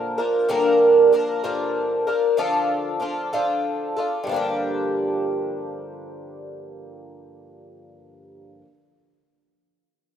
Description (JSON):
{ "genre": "rock", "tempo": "63 BPM (dotted quarters)", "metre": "6/8", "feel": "straight", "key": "G minor", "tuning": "A4 = 440 Hz", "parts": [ { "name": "picked twelve-string acoustic guitar", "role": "solo", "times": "0.0-8.7 s", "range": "G2 to Bb4", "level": "-20 LUFS", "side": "right 1 dB", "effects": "lush chorus" } ], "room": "moderate lush hall reverb, RT60 2.6 s", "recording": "rough home demo mix", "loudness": "-19 LUFS", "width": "side -9 dB against mid", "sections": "0.0-4.3 A section; 4.3-8.1 B section", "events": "none", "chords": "0.5 Gm7; 2.4 Dm; 4.3 Gm7", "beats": "| 0.49 1.44 | 2.38 3.33 | 4.29 5.24 | 6.19 7.14" }